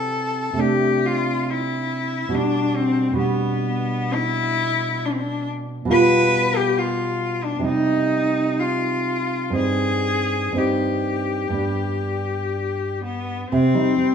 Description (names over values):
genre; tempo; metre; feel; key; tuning
romantic duo for cello and classical guitar; 58-73 BPM; 4/4; rubato; C minor from 5.9 s; A4 = 439 Hz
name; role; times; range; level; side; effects
rich cello; melody; 0.0-14.1 s; B3 to B4; -22 LUFS; left 4 dB; none
nylon-string guitar; accompaniment; 0.0-14.1 s; G2 to F4; -22 LUFS; right 3 dB; none
room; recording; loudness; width
wet recital hall reverb, RT60 1.6 s; minimal, uncompressed stereo recording; -19 LUFS; side -7 dB against mid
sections
0.0-13.5 A section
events
none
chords
0.0 C; 0.6 D5/C; 2.4 G/B; 5.9 G7/B; 7.7 Cm; 11.6 G; 13.5 Cm